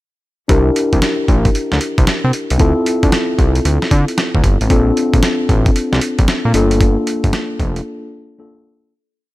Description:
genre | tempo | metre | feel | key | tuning
R&B, new jack swing | 114 BPM | 4/4 | swing 65% on 16ths | unclear | A4 = 435 Hz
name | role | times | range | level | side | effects
mellow tine electric piano | accompaniment | 0.5-8.9 s | Bb3 to Bb4 | -17 LUFS | left 2 dB | none
fat analog bass | bass | 0.5-7.8 s | F1 to D3 | -15 LUFS | equal | none
dusty soul sampler-style drum kit | drums | 0.5-7.9 s | hi-hat, kick drum, snare drum | -16 LUFS | equal | overdrive
room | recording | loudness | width
little or no reverb | none | -12 LUFS | side -17 dB against mid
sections
0.5-8.9 breakdown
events
fade-out 6.8-8.9; break 7.9-8.9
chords
0.5 C7; 2.6 Dm9; 4.7 Bbmaj7; 6.5 Gm7

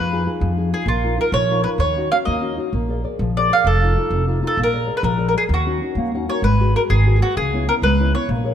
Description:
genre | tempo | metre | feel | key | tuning
italian folk, Italian serenade | 130 BPM (dotted quarters) | 6/8 | straight | Eb minor | A4 = 441 Hz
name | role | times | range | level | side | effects
mandolin | melody | 0.0-8.3 s | F4 to F5 | -20 LUFS | right 1 dB | none
nylon-string guitar | accompaniment | 0.0-8.5 s | C3 to Gb5 | -23 LUFS | left 3 dB | none
upright bass | bass | 0.0-8.5 s | F1 to F2 | -20 LUFS | right 1 dB | none
room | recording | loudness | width
moderate concert hall reverb, RT60 2.4 s | none | -16 LUFS | side -9 dB against mid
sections
0.0-6.4 A section; 6.4-8.5 B section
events
nylon-string guitar fill 6.0-6.4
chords
0.0 Fm7b5; 0.9 Bbsus4; 1.8 Ebm7; 2.7 Bb7; 3.7 F7; 4.6 Bb7; 5.5 Ebm7; 6.4 G#m7; 7.4 C#m7

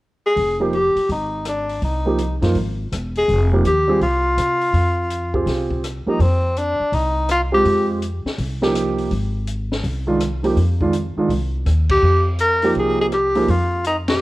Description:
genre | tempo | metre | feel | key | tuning
modal jazz | 165 BPM | 4/4 | swing 64% on 8ths | F dorian | A4 = 440 Hz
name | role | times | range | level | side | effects
clear tenor saxophone | melody | 0.3-7.9, 11.9-14.2 s | C4 to Bb4 | -19 LUFS | left 1 dB | none
upright bass | bass | 0.4-14.2 s | E1 to C3 | -21 LUFS | equal | none
open jazz drum kit | drums | 0.4-14.1 s | hi-hat, kick drum, ride cymbal, rim click, snare drum | -28 LUFS | left 2 dB | none
warm grand piano | accompaniment | 0.6-13.5 s | Eb3 to Ab4 | -20 LUFS | right 2 dB | none
room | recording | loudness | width
light reverb | worn, warbling old tape, cassette tape, warbly pitch drift | -17 LUFS | side -18 dB against mid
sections
0.4-6.2 A section; 6.2-14.2 B section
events
band accent 11.8, 14.0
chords
0.4 Fm9; 6.2 Fm11

